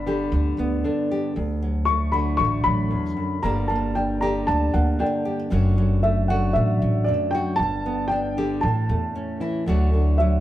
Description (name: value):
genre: acoustic folk duo or small band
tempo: 115 BPM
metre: 4/4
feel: straight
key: D major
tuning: A4 = 441 Hz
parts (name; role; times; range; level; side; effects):
- dark upright piano; melody; 0.0-10.4 s; D5 to C#6; -25 LUFS; equal; none
- nylon-string guitar; accompaniment; 0.0-10.4 s; D2 to G4; -24 LUFS; equal; none
- upright bass; bass; 0.0-10.4 s; F#1 to E2; -23 LUFS; equal; none
room: light reverb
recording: heard from further back in the room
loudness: -20 LUFS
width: side -13 dB against mid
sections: 0.0-9.7 A section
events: none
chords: 0.0 G; 1.4 D; 3.4 Gm; 5.5 D/F#; 7.6 Gadd9; 8.6 A; 9.7 D